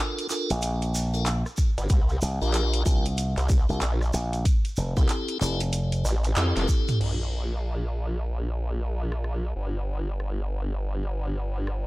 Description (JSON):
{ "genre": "glitch hop", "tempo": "94 BPM", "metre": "4/4", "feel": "swing 62% on 16ths", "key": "unclear", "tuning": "A4 = 441 Hz", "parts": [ { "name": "tonewheel organ", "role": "stabs", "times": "0.0-7.0 s", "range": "C4 to Bb4", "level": "-32 LUFS", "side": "left 1 dB", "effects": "slow rotary speaker, sidechain pumping, digital delay" }, { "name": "pop drum kit", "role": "drums", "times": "0.2-11.8 s", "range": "crash cymbal, handclaps, hi-hat, rim click, snare drum, toms", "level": "-31 LUFS", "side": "right 1 dB", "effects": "none" }, { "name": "shekere", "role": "percussion", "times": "0.2-7.0 s", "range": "none", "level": "-38 LUFS", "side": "right 2 dB", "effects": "none" }, { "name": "slap bass with an envelope filter", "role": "bass", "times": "0.5-6.0 s", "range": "F1 to C2", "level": "-26 LUFS", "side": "equal", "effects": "none" }, { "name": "electronic kick drum", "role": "drums", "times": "1.6-6.8 s", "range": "none", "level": "-22 LUFS", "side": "equal", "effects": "none" }, { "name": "formant-sweep wobble bass", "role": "bass", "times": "1.8-11.9 s", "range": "F1 to F2", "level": "-26 LUFS", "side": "equal", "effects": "chorus" } ], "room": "digital ambience", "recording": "none", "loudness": "-24 LUFS", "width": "side -20 dB against mid", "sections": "0.0-7.0 A section; 7.0-11.9 B section", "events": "drum fill 6.4-7.0; band accent 6.4-6.7", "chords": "0.0 Gm7 (rootless); 1.9 C7sus4; 4.5 Fmaj7; 7.0 N.C.", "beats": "0.62 1.26 | 1.90 2.54 3.18 3.81 | 4.45 5.09 5.73 6.37 | 7.00 7.64 8.28 8.92 | 9.56 10.20 10.84 11.47" }